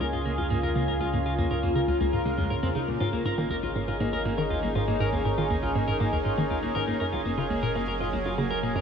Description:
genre	ambient, sequencer-driven space music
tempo	120 BPM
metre	4/4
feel	straight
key	unclear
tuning	A4 = 440 Hz
part	evolving wavetable pad	sustained chords	0.0-8.8 s	Db3 to Bb4	-28 LUFS	equal	chorus, built-in reverb
part	clean electric guitar	arpeggios	0.0-8.8 s	Bb2 to Bb4	-31 LUFS	left 2 dB	auto-pan, tape echo
part	hollow square pluck	riff	0.0-8.8 s	C2 to Eb3	-29 LUFS	right 1 dB	chorus, phaser, tape echo
part	warm sub bass	bass	0.0-8.8 s	Gb1 to Db2	-35 LUFS	equal	none
room	wet huge ambient reverb, RT60 8.2 s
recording	none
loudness	-24 LUFS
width	side -7 dB against mid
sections	0.0-8.8 A section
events	filter sweep on synth arpeggio sound 0.0-8.8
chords	0.0 Db; 3.0 Absus4; 7.0 Gbsus2

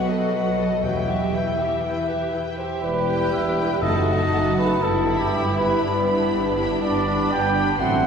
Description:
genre	classical, dramatic, fast romantic movement for symphony orchestra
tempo	120 BPM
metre	4/4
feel	rubato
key	E minor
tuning	A4 = 441 Hz
part	warm symphonic violin section	melody	0.0-8.0 s	D#5 to C6	-32 LUFS	left 4 dB	none
part	large flute ensemble	second line	0.0-2.3 s	E4 to F#4	-34 LUFS	left 2 dB	none
part	warm symphonic violin section	second line	0.0-8.1 s	D4 to B4	-31 LUFS	left 2 dB	none
part	warm symphonic viola section	accompaniment	0.0-8.0 s	C4 to B4	-30 LUFS	right 1 dB	none
part	warm French horn section	sustained chords	0.0-8.1 s	F#3 to E5	-28 LUFS	left 3 dB	none
part	rich symphonic double bass section	bass	0.0-8.1 s	E1 to E2	-29 LUFS	right 2 dB	none
part	warm symphonic cello section	bass	0.0-8.1 s	E2 to F#3	-29 LUFS	right 3 dB	none
part	timpani	percussion	0.8-4.5 s	E2 to F#2	-33 LUFS	equal	none
part	dark clarinet	second line	1.3-8.1 s	C4 to E5	-29 LUFS	left 1 dB	none
part	mellow bassoon	accompaniment	2.8-8.1 s	G3 to B3	-28 LUFS	right 2 dB	none
part	mellow trumpet	stabs	2.8-8.1 s	G4 to G5	-23 LUFS	right 1 dB	none
room	wet church reverb, RT60 2.7 s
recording	minimal, uncompressed stereo recording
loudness	-19 LUFS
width	side -6 dB against mid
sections	0.0-2.8 A section; 2.8-8.1 B section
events	none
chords	0.0 B7; 0.8 Em; 3.8 D#dim/F#; 4.8 Em/G; 6.8 G

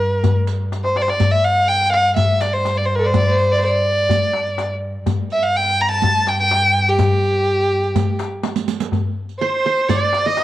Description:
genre	Arabic maqam ensemble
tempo	124 BPM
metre	4/4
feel	straight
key	G maqam rast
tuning	A4 = 440 Hz
part	warm violin	melody	0.0-10.4 s	G4 to Bb5+48c	-17 LUFS	equal	none
part	dark cello	drone	0.0-9.0 s	G2	-23 LUFS	equal	stereo widening, cassette tape
part	darbuka	percussion	0.1-10.4 s	none	-21 LUFS	left 3 dB	none
part	riq	percussion	0.2-10.4 s	none	-26 LUFS	right 9 dB	none
part	qanun	second line	9.4-10.4 s	C5 to Eb5	-20 LUFS	right 7 dB	cassette tape
room	moderate spring reverb, RT60 1.4 s, small room ambience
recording	home recording on cassette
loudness	-15 LUFS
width	side -14 dB against mid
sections	0.0-8.9 A section; 8.9-10.4 B section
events	drum fill 0.7-1.2, 8.4-8.9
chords	none

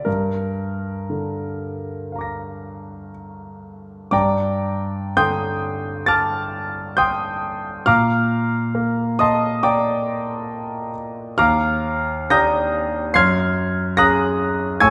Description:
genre	classical, impressionist solo piano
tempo	55-73 BPM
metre	4/4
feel	rubato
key	G minor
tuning	A4 = 439 Hz
part	clear concert grand piano	solo	0.0-14.9 s	Eb2 to C7	-21 LUFS	equal	none
room	wet recital hall reverb, RT60 1.4 s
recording	dark, warm production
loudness	-20 LUFS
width	mono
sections	0.0-4.1 A section; 4.1-14.9 A section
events	none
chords	0.1 Gm7; 4.1 Gm9; 7.9 Bb69; 11.4 Ebmaj9; 13.1 F#maj9

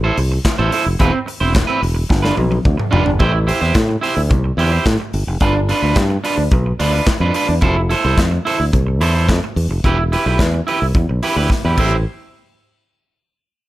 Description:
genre	disco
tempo	108 BPM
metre	4/4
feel	straight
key	A minor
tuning	A4 = 440 Hz
part	electric guitar at the edge of break-up	accompaniment	0.0-12.0 s	C4 to C5	-19 LUFS	right 3 dB	warbly pitch drift
part	fingered electric bass	bass	0.0-12.0 s	E1 to A2	-17 LUFS	equal	none
part	modern studio drum kit	drums	0.2-11.9 s	crash cymbal, handclaps, hi-hat, kick drum, snare drum, toms	-19 LUFS	equal	none
room	small room ambience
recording	none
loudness	-14 LUFS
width	side -16 dB against mid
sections	0.0-3.2 A section; 3.2-12.1 B section; 12.1-13.7 C section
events	drum fill 2.1-3.2, 11.5-12.1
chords	0.0 Fmaj7 (rootless); 1.0 Cmaj7/E; 2.1 G7; 3.2 Am7; 5.1 G7; 7.6 Fmaj7; 9.8 Cmaj7/E (rootless); 11.8 Am7; 12.1 N.C.

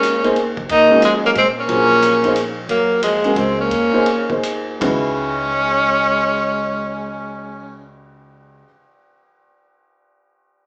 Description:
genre	modal jazz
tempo	154-181 BPM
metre	3/4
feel	swing 64% on 8ths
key	unclear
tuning	A4 = 440 Hz
part	bright tenor saxophone	melody	0.0-7.9 s	G#3 to D#4	-19 LUFS	equal	none
part	warm trombone	second line	0.0-7.9 s	E#3 to A#3	-24 LUFS	equal	none
part	warm baby grand piano	accompaniment	0.0-8.7 s	C#3 to B#4	-23 LUFS	equal	none
part	upright bass	bass	0.0-8.6 s	A#1 to A#2	-34 LUFS	equal	none
part	vintage drum kit	drums	0.0-4.9 s	hi-hat, kick drum, ride cymbal, toms	-31 LUFS	equal	none
room	wet large studio reverb, RT60 0.8 s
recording	band playing live in one room, small speaker sound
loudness	-17 LUFS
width	mono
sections	0.7-4.8 A section; 4.8-7.2 B section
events	slowing down 2.7-4.8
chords	0.0 D#m7; 0.7 D#m11; 4.8 C#m11

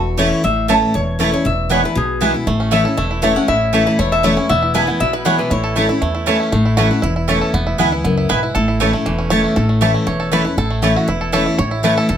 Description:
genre	bluegrass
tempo	237 BPM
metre	4/4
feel	straight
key	A major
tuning	A4 = 440 Hz
part	lap resonator guitar	melody	0.0-6.3 s	F#4 to A5	-19 LUFS	left 2 dB	none
part	picked steel-string acoustic guitar	accompaniment	0.0-12.2 s	E2 to E4	-18 LUFS	left 2 dB	none
part	upright bass	bass	0.0-12.2 s	E1 to E2	-21 LUFS	equal	none
part	mandolin	stabs	0.2-11.9 s	A3 to A5	-19 LUFS	right 3 dB	none
part	bluegrass banjo	melody	2.5-12.2 s	E3 to C#5	-22 LUFS	right 3 dB	none
room	light reverb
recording	none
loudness	-14 LUFS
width	side -9 dB against mid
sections	0.0-6.5 A section; 6.5-12.2 B section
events	five-string banjo solo 6.5-12.2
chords	0.0 A; 1.5 E; 2.5 A; 4.5 E; 5.5 A; 7.5 E; 8.6 A

